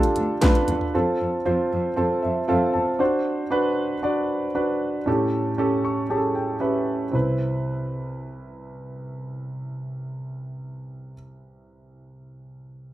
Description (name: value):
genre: piano-driven pop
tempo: 116 BPM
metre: 4/4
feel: straight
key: C major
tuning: A4 = 440 Hz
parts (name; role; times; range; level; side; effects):
- warm concert grand piano; accompaniment; 0.0-12.9 s; C2 to C#6; -23 LUFS; right 1 dB; none
- house drum kit; drums; 0.0-0.9 s; handclaps, hi-hat, kick drum, snare drum, toms; -21 LUFS; equal; overdrive
- rich cello; bass; 0.2-2.8 s; D2 to F2; -28 LUFS; equal; none
room: light reverb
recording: rough home demo mix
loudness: -21 LUFS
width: side -14 dB against mid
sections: 0.0-7.1 A section; 7.1-11.3 B section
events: grand piano fill 2.0-3.0, 5.6-7.1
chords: 0.0 Dm; 0.9 F; 3.0 D7; 5.1 A7; 7.1 Cmaj7